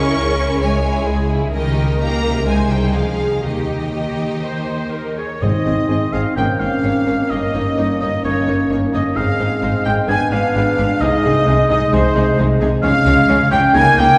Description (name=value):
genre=classical, dramatic, fast romantic movement for symphony orchestra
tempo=129 BPM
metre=4/4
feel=rubato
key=Ab major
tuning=A4 = 441 Hz
part: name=bright symphonic violin section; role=melody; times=0.0-14.1 s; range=Ab4 to Db6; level=-32 LUFS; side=equal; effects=none
part: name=rich symphonic violin section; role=second line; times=0.0-14.2 s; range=Eb4 to Ab5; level=-27 LUFS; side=equal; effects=none
part: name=clear symphonic viola section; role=accompaniment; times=0.0-14.1 s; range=Ab3 to Db5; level=-27 LUFS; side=equal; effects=none
part: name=concert harp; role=arpeggios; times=0.0-14.2 s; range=G2 to Db5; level=-27 LUFS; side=equal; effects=none
part: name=rich symphonic cello section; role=bass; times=0.0-14.1 s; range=G2 to Db4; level=-26 LUFS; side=equal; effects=none
part: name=rich symphonic double bass section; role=bass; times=0.0-14.1 s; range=G1 to Eb2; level=-25 LUFS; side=equal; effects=none
part: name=mellow small flute group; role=second line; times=5.2-14.2 s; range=C5 to Ab5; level=-25 LUFS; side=equal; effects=none
part: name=warm oboe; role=second line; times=5.2-14.2 s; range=C5 to Ab5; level=-23 LUFS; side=equal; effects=none
part: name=warm clarinet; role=second line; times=5.4-14.2 s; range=C4 to Eb4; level=-28 LUFS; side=equal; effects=none
part: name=mellow bassoon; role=accompaniment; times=5.4-14.2 s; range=Ab3 to C4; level=-26 LUFS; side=equal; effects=none
part: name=mellow French horn section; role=sustained chords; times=5.4-14.2 s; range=Ab3 to Eb4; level=-25 LUFS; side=equal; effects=none
part: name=timpani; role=percussion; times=5.4-7.0 s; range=Ab2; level=-27 LUFS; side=equal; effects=none
room=wet concert hall reverb, RT60 2.4 s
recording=heard from further back in the room, nothing above 10.3 kHz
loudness=-17 LUFS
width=mono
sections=0.0-5.4 A section; 5.4-14.2 B section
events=none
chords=0.0 Bbm7b5/Db; 1.5 Eb7/Db; 2.5 Ab/C; 3.4 Eb; 5.4 Ab; 6.4 Bbm7/Ab; 7.3 Eb7/G; 9.2 Ab; 10.1 Abdim7; 11.0 Ab/C; 12.8 Db